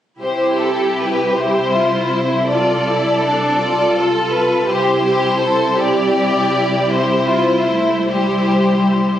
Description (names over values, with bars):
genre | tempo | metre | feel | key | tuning
classical, slow romantic movement for string orchestra | 54 BPM (dotted quarters) | 6/8 | uneven beats, rubato | C major | A4 = 441 Hz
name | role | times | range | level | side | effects
clear studio violin section | melody | 0.2-9.2 s | A4 to D5 | -19 LUFS | left 1 dB | none
rich studio violin section | second line | 0.2-9.2 s | E4 to A4 | -19 LUFS | left 1 dB | none
rich studio viola section | accompaniment | 0.2-9.2 s | D4 to G4 | -21 LUFS | right 1 dB | none
rich studio double bass section | bass | 0.2-9.2 s | C2 | -26 LUFS | right 1 dB | none
warm studio cello section | bass | 0.2-9.2 s | C3 to A3 | -22 LUFS | equal | none
room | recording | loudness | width
light reverb | recorded on a phone in the room, studio reverb | -14 LUFS | side -11 dB against mid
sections
0.2-9.2 A section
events
none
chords
0.2 C; 2.5 Dm9/C; 4.7 C